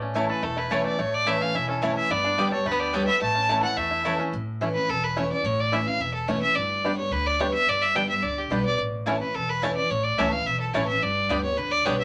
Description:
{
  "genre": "bluegrass",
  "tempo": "215 BPM",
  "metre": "4/4",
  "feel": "straight",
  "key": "A mixolydian",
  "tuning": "A4 = 440 Hz",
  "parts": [
    { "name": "picked steel-string acoustic guitar", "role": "accompaniment", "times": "0.0-12.0 s", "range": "E2 to G4", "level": "-32 LUFS", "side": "equal", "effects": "none" },
    { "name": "bluegrass banjo", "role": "arpeggios", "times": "0.0-11.9 s", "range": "A3 to A4", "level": "-32 LUFS", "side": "equal", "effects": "none" },
    { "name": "upright bass", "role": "bass", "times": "0.0-12.0 s", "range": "E1 to E2", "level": "-36 LUFS", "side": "equal", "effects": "none" },
    { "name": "mandolin", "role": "stabs", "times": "0.2-4.1, 9.1-11.9 s", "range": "A3 to A5", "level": "-30 LUFS", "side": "equal", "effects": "none" },
    { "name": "clear fiddle", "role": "melody", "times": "0.3-12.0 s", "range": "G4 to A5", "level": "-27 LUFS", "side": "equal", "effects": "none" }
  ],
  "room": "wet small room reverb, RT60 0.5 s",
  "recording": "none",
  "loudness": "-25 LUFS",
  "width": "mono",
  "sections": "0.0-4.3 A section; 4.3-12.0 A section",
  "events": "none",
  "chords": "0.0 A; 2.1 G; 3.2 A; 6.6 G; 8.8 A; 11.0 G"
}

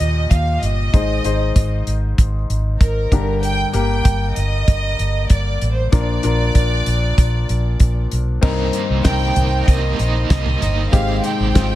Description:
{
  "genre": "piano-driven pop",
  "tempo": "96 BPM",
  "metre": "4/4",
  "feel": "straight",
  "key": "unclear",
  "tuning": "A4 = 440 Hz",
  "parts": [
    { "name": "rich studio violin section", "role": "melody", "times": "0.0-11.8 s", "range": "Bb4 to G5", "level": "-24 LUFS", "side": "right 2 dB", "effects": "none" },
    { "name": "clear baby grand piano", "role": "accompaniment", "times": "0.0-11.8 s", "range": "G2 to C5", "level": "-24 LUFS", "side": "left 5 dB", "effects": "none" },
    { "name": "vintage muted fingered electric bass", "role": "bass", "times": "0.0-11.8 s", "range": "G1 to Eb2", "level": "-19 LUFS", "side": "equal", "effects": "none" },
    { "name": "damped 70s drum kit", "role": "drums", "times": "0.0-11.7 s", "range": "crash cymbal, hi-hat, kick drum, snare drum, toms", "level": "-16 LUFS", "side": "equal", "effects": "none" },
    { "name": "mellow tonewheel organ", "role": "sustained chords", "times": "8.4-11.8 s", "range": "Ab3 to C6", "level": "-31 LUFS", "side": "left 1 dB", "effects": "slow rotary speaker" },
    { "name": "biting overdriven guitar", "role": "riff", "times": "8.4-11.8 s", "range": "C3 to Bb4", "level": "-25 LUFS", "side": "right 7 dB", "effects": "tremolo" }
  ],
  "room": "small room ambience",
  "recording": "none",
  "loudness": "-15 LUFS",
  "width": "side -14 dB against mid",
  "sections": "0.0-8.4 A section; 8.4-11.8 B section",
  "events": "none",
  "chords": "0.0 Ebadd9; 0.9 Ab; 3.1 Gm; 5.9 Bb; 8.4 Cm7; 10.9 Abmaj7"
}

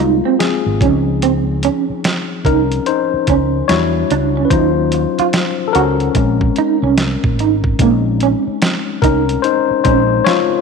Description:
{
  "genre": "R&B, neo-soul",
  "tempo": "73 BPM",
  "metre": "4/4",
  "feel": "swing 62% on 16ths",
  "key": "Bb minor",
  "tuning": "A4 = 440 Hz",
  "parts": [
    { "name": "electric guitar through a small old amp", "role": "second line", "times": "0.0-10.3 s", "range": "Bb3 to Gb4", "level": "-18 LUFS", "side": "right 13 dB", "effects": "tremolo" },
    { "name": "tine electric piano", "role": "accompaniment", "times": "0.0-10.6 s", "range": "F3 to Db5", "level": "-16 LUFS", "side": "left 10 dB", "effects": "medium stereo tremolo" },
    { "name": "mellow fretless electric bass", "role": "bass", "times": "0.0-10.2 s", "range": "Ab1 to E2", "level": "-18 LUFS", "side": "right 2 dB", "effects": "transformer saturation" },
    { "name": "boom bap sampler-style drum kit", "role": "drums", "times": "0.4-10.5 s", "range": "hi-hat, kick drum, snare drum", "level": "-18 LUFS", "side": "right 2 dB", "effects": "none" }
  ],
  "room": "moderate echo chamber reverb, RT60 2.4 s",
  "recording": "1960s-style stereo with parts hard left and right",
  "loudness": "-12 LUFS",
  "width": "side -5 dB against mid",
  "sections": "0.0-7.8 A section; 7.8-10.6 A section",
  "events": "tine electric piano solo 0.0-7.8, 7.8-10.6",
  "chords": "0.0 Ab13; 0.8 Dbmaj9; 3.7 Em9; 4.5 Ebm9; 6.2 Bbm7; 7.8 Bbm11"
}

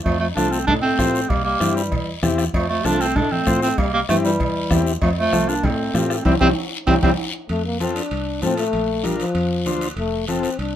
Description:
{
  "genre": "latin, cumbia",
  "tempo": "194 BPM",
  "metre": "4/4",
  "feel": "straight",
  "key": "F major",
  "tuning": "A4 = 441 Hz",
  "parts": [
    { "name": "breathy clarinet", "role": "melody", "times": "0.0-7.1 s", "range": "G3 to D4", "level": "-21 LUFS", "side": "right 3 dB", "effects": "none" },
    { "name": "breathy trombone", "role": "second line", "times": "0.0-10.8 s", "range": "E3 to D4", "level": "-25 LUFS", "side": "left 4 dB", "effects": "none" },
    { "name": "fingered electric bass", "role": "bass", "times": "0.1-10.8 s", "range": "F1 to A2", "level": "-25 LUFS", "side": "equal", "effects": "none" },
    { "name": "bombo", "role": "percussion", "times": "0.1-7.1 s", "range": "none", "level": "-24 LUFS", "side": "left 1 dB", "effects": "none" },
    { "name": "cowbell and timbales", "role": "percussion", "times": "0.1-10.7 s", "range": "none", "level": "-31 LUFS", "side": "right 3 dB", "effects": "none" },
    { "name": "guiro", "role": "percussion", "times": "0.1-10.8 s", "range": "none", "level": "-33 LUFS", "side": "left 6 dB", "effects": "none" },
    { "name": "combo organ", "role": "accompaniment", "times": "0.4-10.5 s", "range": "C4 to C5", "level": "-24 LUFS", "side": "left 4 dB", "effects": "none" },
    { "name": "congas", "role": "percussion", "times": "0.4-10.7 s", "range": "none", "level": "-28 LUFS", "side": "right 2 dB", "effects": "none" }
  ],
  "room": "light reverb",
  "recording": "minimal, uncompressed stereo recording",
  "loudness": "-18 LUFS",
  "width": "side -10 dB against mid",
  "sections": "0.0-7.5 A section; 7.5-10.8 B section",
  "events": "band accent 6.3-7.5; drum fill 6.6-7.5; trombone solo 7.5-10.8",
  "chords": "0.1 F; 1.3 C7; 2.5 F; 3.8 C; 5.0 F; 6.3 C; 7.5 F; 8.7 Bb; 10.0 F"
}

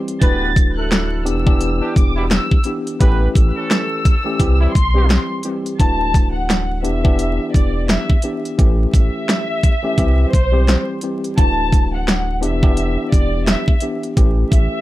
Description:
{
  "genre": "hip hop, boom-bap hip-hop",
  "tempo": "86 BPM",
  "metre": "4/4",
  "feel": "swing 58% on 16ths",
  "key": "D major",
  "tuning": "A4 = 442 Hz",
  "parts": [
    { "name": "tine electric piano", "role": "accompaniment", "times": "0.0-14.8 s", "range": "E3 to G4", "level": "-22 LUFS", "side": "left 1 dB", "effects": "overdrive, fast stereo tremolo, high-pass filter, low-pass filter" },
    { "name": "drum and bass drum kit", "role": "drums", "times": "0.1-14.7 s", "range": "hi-hat, kick drum, snare drum", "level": "-14 LUFS", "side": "equal", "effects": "vintage 12-bit sampler grit" },
    { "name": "rich studio violin section", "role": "melody", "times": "0.2-14.8 s", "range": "C5 to A6", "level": "-24 LUFS", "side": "equal", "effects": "high-pass filter, low-pass filter" },
    { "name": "clear horn section", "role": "stabs", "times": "0.2-5.1 s", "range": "B2 to B4", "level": "-26 LUFS", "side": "right 4 dB", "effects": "high-pass filter, low-pass filter, ping-pong delay" },
    { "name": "warm sub bass", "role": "bass", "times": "0.2-14.7 s", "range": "D1 to C2", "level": "-19 LUFS", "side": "equal", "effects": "none" }
  ],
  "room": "little or no reverb",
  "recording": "vinyl crackle",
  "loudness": "-14 LUFS",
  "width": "side -16 dB against mid",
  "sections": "0.0-5.8 A section; 5.8-14.8 B section",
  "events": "none",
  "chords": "0.2 Dadd9; 1.3 Em7; 3.0 A7; 4.4 C; 5.8 Dadd9; 6.8 Em7; 8.6 A7; 10.0 C; 11.4 Dadd9; 12.4 Em7; 14.2 A7"
}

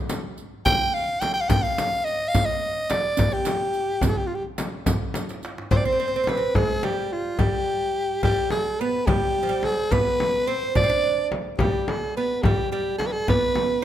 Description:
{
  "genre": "Persian modal ensemble",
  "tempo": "71 BPM (dotted quarters)",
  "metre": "6/8",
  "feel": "straight",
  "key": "G dastgah homayun",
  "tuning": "A4 = 440 Hz",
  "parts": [
    { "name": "frame drum", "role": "percussion", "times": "0.1-13.7 s", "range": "none", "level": "-27 LUFS", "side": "left 2 dB", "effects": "none" },
    { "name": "riq", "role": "percussion", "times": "0.1-5.5 s", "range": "none", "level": "-34 LUFS", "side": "right 6 dB", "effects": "none" },
    { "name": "tombak", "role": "percussion", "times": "0.1-13.8 s", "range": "none", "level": "-28 LUFS", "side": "right 1 dB", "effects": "none" },
    { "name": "growling soprano saxophone", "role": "melody", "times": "0.7-13.8 s", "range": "F4 to G5", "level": "-23 LUFS", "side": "equal", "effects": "none" },
    { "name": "oud", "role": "second line", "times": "5.7-13.8 s", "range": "F3 to D4", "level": "-28 LUFS", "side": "right 6 dB", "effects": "none" }
  ],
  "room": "moderate recital hall reverb, RT60 1.6 s",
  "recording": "none",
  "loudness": "-21 LUFS",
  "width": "side -11 dB against mid",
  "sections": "0.0-5.7 A section; 5.7-13.8 B section",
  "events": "drum fill 5.1-5.7",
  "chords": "none"
}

